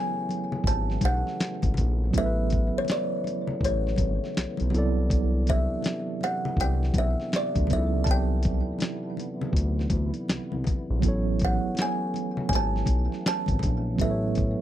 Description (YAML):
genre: R&B, neo-soul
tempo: 81 BPM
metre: 4/4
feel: swing 64% on 16ths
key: A major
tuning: A4 = 439 Hz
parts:
  - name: kalimba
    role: melody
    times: 0.0-14.6 s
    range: C#5 to A5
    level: -31 LUFS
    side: equal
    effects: none
  - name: mellow tine electric piano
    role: accompaniment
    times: 0.0-14.6 s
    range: F#3 to D5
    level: -31 LUFS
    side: right 5 dB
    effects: medium stereo tremolo
  - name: percussive tonewheel organ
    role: sustained chords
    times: 0.0-14.6 s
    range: C3 to E4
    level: -38 LUFS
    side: left 3 dB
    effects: overdrive, chorus vibrato, slow rotary speaker
  - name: dusty soul sampler-style drum kit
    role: drums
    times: 0.3-14.6 s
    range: hi-hat, kick drum, snare drum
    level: -27 LUFS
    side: equal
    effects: none
  - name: congas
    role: percussion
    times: 0.3-14.6 s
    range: none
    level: -37 LUFS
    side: left 5 dB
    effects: none
  - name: smooth synth bass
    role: bass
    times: 0.6-14.6 s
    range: G#1 to D2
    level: -26 LUFS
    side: equal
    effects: none
room: little or no reverb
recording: dry, close 1970s-style studio recording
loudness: -24 LUFS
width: side -12 dB against mid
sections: 0.0-14.6 A section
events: none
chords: 0.0 Amaj9; 4.7 Cmaj9; 11.0 Amaj9